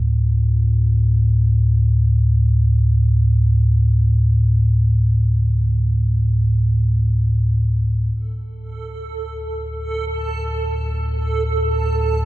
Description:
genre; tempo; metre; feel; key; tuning
dark ambient drone; free time; none; none; unclear; A4 = 441 Hz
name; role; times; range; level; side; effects
deep rumbling drone; drone; 0.0-12.3 s; D2 to A2; -16 LUFS; equal; built-in reverb, wide subtle chorus
backwards swelling texture; texture; 8.8-12.3 s; A4; -24 LUFS; right 4 dB; built-in reverb
room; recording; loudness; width
light reverb; none; -15 LUFS; side -17 dB against mid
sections
0.0-8.1 A section; 8.1-12.3 B section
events
none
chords
0.0 D5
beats
free time

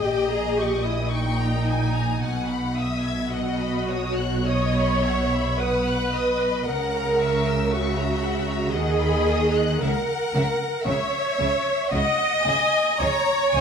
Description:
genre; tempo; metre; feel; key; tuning
classical, slow romantic movement for string orchestra; 56 BPM; 3/4; rubato; unclear; A4 = 441 Hz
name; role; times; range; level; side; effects
clear studio violin section; melody; 0.0-13.6 s; D#5 to G#6; -34 LUFS; left 4 dB; none
clear studio violin section; second line; 0.0-13.6 s; C#5 to A#5; -30 LUFS; left 5 dB; none
rich studio viola section; accompaniment; 0.0-13.6 s; D#4 to D#5; -23 LUFS; equal; none
clear studio double bass section; bass; 0.0-13.6 s; A#1 to D#2; -28 LUFS; right 2 dB; none
rich studio cello section; bass; 0.0-13.6 s; A#2 to D#3; -28 LUFS; right 1 dB; none
room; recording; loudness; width
moderate recital hall reverb, RT60 1.4 s; none; -20 LUFS; side -7 dB against mid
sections
0.0-13.6 A section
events
none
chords
0.0 D#7/A#; 2.2 G#m/B; 3.3 B; 6.7 F#7/C#; 8.8 B/D#; 9.8 A#dim/C#; 13.0 D#7(no3)/C# (rootless)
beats
| 0.03 1.13 2.22 | 3.31 4.49 5.60 | 6.67 7.73 8.76 | 9.81 10.87 11.93 | 13.00

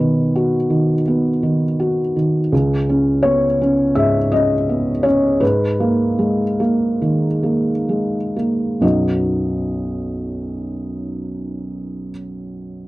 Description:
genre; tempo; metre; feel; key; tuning
neoclassical minimalist piano; 63-84 BPM; 4/4; rubato; B major; A4 = 438 Hz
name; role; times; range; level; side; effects
felt-muted upright piano; solo; 0.0-12.9 s; B1 to E5; -16 LUFS; equal; none
room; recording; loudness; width
little or no reverb; dry, close 1970s-style studio recording; -16 LUFS; side -18 dB against mid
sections
0.0-2.5 A section; 2.5-8.8 B section; 8.8-12.6 C section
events
slowing down 1.1-8.8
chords
0.0 B; 2.5 C#5; 5.4 G#madd9; 8.8 B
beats
0.34 1.06 1.78 | 2.52 3.23 3.95 4.68 | 5.42 6.19 7.01 7.89 | 8.82 9.76 10.70 11.64

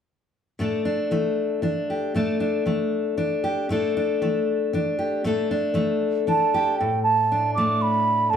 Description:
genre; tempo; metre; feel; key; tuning
folk; 116 BPM; 3/4; straight; unclear; A4 = 440 Hz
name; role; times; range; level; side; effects
fingerpicked steel-string acoustic guitar; accompaniment; 0.6-8.4 s; A2 to A4; -22 LUFS; left 2 dB; none
baroque flute; melody; 6.3-8.4 s; G5 to D6; -20 LUFS; right 4 dB; plate reverb
room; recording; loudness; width
wet studio reverb, RT60 0.7 s; heard from further back in the room; -21 LUFS; side -8 dB against mid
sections
0.6-6.8 A section; 6.8-8.4 B section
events
none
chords
0.6 Asus4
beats
| 0.58 1.10 1.62 | 2.13 2.65 3.16 | 3.68 4.20 4.71 | 5.23 5.74 6.26 | 6.77 7.29 7.81 | 8.32

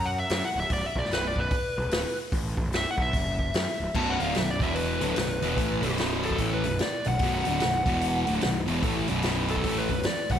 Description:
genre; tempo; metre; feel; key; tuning
blues rock power trio and southern rock; 148 BPM; 4/4; swing 62% on 8ths; B minor; A4 = 440 Hz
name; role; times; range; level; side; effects
overdriven slide guitar; melody; 0.0-10.4 s; A4 to A5; -30 LUFS; left 1 dB; none
fuzz picked electric bass; bass; 0.0-10.4 s; B0 to F#2; -31 LUFS; equal; overdrive
vintage drum kit; drums; 0.3-10.4 s; crash cymbal, hi-hat, kick drum, snare drum; -30 LUFS; equal; none
thick fuzz guitar; riff; 3.9-10.4 s; B1 to A3; -27 LUFS; equal; distortion, slapback echo
room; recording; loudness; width
moderate lush hall reverb, RT60 1.7 s; big arena sound; -24 LUFS; side -9 dB against mid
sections
0.0-3.9 A section; 3.9-10.4 B section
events
electric slide guitar solo 0.0-3.9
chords
0.0 F#5; 0.7 N.C.; 3.1 F#5; 3.9 Bm; 4.6 E5; 5.0 Bm; 7.8 E5; 8.2 Bm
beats
0.30 | 0.71 1.11 1.52 1.92 | 2.33 2.73 3.14 3.54 | 3.95 4.35 4.76 5.17 | 5.57 5.98 6.39 6.79 | 7.20 7.61 8.01 8.42 | 8.83 9.24 9.64 10.05

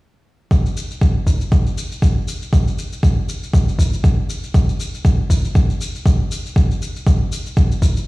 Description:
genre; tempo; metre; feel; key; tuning
house; 119 BPM; 4/4; swing 56% on 16ths; none; none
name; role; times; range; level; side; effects
electronic kick drum; drums; 0.5-7.9 s; none; -14 LUFS; equal; overdrive
shaker; drums; 0.5-8.1 s; none; -32 LUFS; left 2 dB; overdrive
room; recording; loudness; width
little or no reverb; played on a big sound system in a bare room, stone room reverb, small room reverb; -15 LUFS; side -21 dB against mid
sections
0.5-8.1 A section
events
none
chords
none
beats
| 0.51 1.02 1.52 2.02 | 2.53 3.03 3.54 4.04 | 4.54 5.05 5.55 6.06 | 6.56 7.07 7.57

